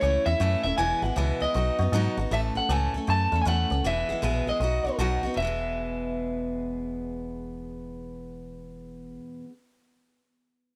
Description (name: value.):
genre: rockabilly.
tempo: 157 BPM.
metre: 4/4.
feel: swing 64% on 8ths.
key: E major.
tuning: A4 = 442 Hz.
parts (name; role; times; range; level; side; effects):
electric guitar through a small old amp; melody; 0.0-9.4 s; C#5 to A5; -30 LUFS; equal; tape echo.
picked steel-string acoustic guitar; accompaniment; 0.0-9.5 s; E2 to A4; -34 LUFS; equal; none.
metallic FM bass; bass; 0.0-9.2 s; D#1 to G#2; -31 LUFS; equal; none.
room: light reverb.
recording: none.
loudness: -27 LUFS.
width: mono.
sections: 0.0-2.3 A section; 2.3-5.4 B section; 5.4-8.4 C section.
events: none.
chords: 0.0 A; 0.8 E; 1.5 B; 2.3 A; 3.8 E; 4.6 B; 5.4 E.